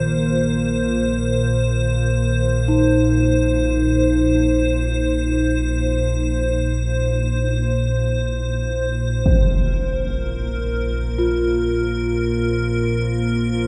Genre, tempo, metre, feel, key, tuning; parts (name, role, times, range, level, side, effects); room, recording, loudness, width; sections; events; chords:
dark ambient drone; free time; A4 = 440 Hz
dark analog pad; sustained chords; 0.0-13.7 s; Bb3 to C5; -32 LUFS; equal; chorus
gamelan-type bronze metallophone; arpeggios; 0.0-13.7 s; Eb3 to F4; -25 LUFS; equal; tape echo
deep rumbling drone; drone; 0.0-13.7 s; Bb1 to Bb2; -23 LUFS; equal; built-in reverb
icy glass pad; texture; 0.0-13.7 s; Bb4 to C5; -27 LUFS; equal; chorus, built-in reverb
impact; percussion; 9.3-9.5 s; -24 LUFS; equal; low-pass filter on sfx
wet huge ambient reverb, RT60 8.4 s; -20 LUFS; mono
0.0-9.3 A section; 9.3-13.7 B section
fade-out on analog synth pad 0.0-9.3
0.0 Bbsus2